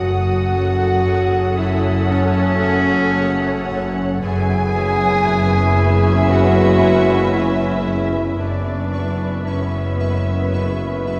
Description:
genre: cinematic, suspense film score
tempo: 57 BPM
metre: 4/4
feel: straight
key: F# minor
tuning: A4 = 440 Hz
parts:
  - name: muted studio violin section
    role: melody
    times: 0.0-11.2 s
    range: E5 to F#5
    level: -30 LUFS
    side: equal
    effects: none
  - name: muted studio violin section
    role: second line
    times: 0.0-11.2 s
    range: C#5 to G#5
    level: -28 LUFS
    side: equal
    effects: none
  - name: warm clarinet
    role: second line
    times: 0.0-11.2 s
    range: C#4 to G#4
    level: -23 LUFS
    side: equal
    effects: none
  - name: muted symphonic viola section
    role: accompaniment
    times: 0.0-11.2 s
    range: B3 to B4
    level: -29 LUFS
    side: equal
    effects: none
  - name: clear trombone section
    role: sustained chords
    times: 0.0-11.2 s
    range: B2 to A3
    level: -33 LUFS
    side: equal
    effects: none
  - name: dark French horn section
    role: sustained chords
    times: 0.0-11.2 s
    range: B3 to F#4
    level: -30 LUFS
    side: equal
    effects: none
  - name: pulsing gated texture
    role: sustained chords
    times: 0.0-11.2 s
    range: A4 to C#6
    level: -33 LUFS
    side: equal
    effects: chorus, built-in reverb
  - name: concert harp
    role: riff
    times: 0.0-11.2 s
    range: F#2 to F#3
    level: -28 LUFS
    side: equal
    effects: none
  - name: muted studio cello section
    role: bass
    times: 0.0-11.2 s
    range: F#2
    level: -26 LUFS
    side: equal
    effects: none
  - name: muted studio double bass section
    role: bass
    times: 0.0-11.2 s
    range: F#1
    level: -24 LUFS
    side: equal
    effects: none
  - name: organ-like drone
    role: drone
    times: 0.0-11.2 s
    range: F#1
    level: -32 LUFS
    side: equal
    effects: none
  - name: muted studio violin section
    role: texture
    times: 0.0-3.7 s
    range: F#5 to D#6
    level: -36 LUFS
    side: equal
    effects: none
room: wet church reverb, RT60 3.1 s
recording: recorded in a church or concert hall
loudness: -17 LUFS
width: mono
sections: 0.0-11.2 A section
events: none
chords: 0.0 F#m; 4.2 C#m7/F#

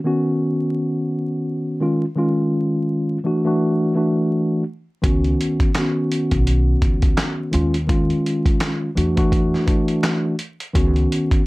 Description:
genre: hip hop, boom-bap hip-hop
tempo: 84 BPM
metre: 4/4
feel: swing 57% on 16ths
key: unclear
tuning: A4 = 440 Hz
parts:
  - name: mellow tine electric piano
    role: accompaniment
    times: 0.0-11.4 s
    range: D#3 to F#4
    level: -19 LUFS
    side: equal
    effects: medium stereo tremolo, cassette tape, high-pass filter, low-pass filter
  - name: upright bass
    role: bass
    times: 5.0-11.0 s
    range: B1 to E2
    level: -20 LUFS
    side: equal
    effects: none
  - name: dusty soul sampler-style drum kit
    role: drums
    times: 5.0-11.5 s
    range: handclaps, hi-hat, kick drum, snare drum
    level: -20 LUFS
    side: equal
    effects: none
room: little or no reverb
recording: vinyl crackle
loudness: -17 LUFS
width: side -22 dB against mid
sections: 0.0-11.5 A section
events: none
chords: 0.0 C#9sus4; 1.8 D#9sus4; 3.2 E9sus4; 5.0 C#9sus4; 7.5 D#9sus4; 9.0 E9sus4; 10.8 C#9sus4

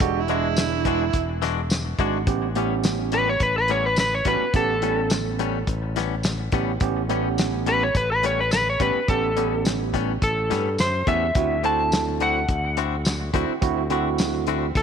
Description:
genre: straight-eighth soul blues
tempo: 106 BPM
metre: 4/4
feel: swing 53% on 16ths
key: A mixolydian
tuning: A4 = 440 Hz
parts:
  - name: overdriven harmonica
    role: second line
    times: 0.0-1.3 s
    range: E4 to G4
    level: -28 LUFS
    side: right 9 dB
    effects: none
  - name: overdriven tine electric piano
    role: accompaniment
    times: 0.0-14.7 s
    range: G#3 to A4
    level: -27 LUFS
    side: right 12 dB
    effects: none
  - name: modern bright fingered electric bass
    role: bass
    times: 0.0-14.8 s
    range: E1 to G2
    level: -27 LUFS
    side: left 1 dB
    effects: none
  - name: warm soul drum kit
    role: drums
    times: 0.0-14.8 s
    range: hi-hat, kick drum, snare drum, tambourine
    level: -25 LUFS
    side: left 1 dB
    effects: none
  - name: direct-recorded clean electric guitar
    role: stabs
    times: 0.3-14.7 s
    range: A2 to F#4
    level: -29 LUFS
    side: left 12 dB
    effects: tape echo
  - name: electric slide guitar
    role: melody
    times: 3.1-14.8 s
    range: A4 to A5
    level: -23 LUFS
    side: left 1 dB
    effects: tape echo
room: light reverb, studio ambience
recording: 1960s-style stereo with parts hard left and right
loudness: -20 LUFS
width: side -7 dB against mid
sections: 0.0-2.3 A section; 2.3-14.8 B section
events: electric slide guitar solo 2.3-14.8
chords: 0.0 E9; 2.3 A9; 11.4 D9

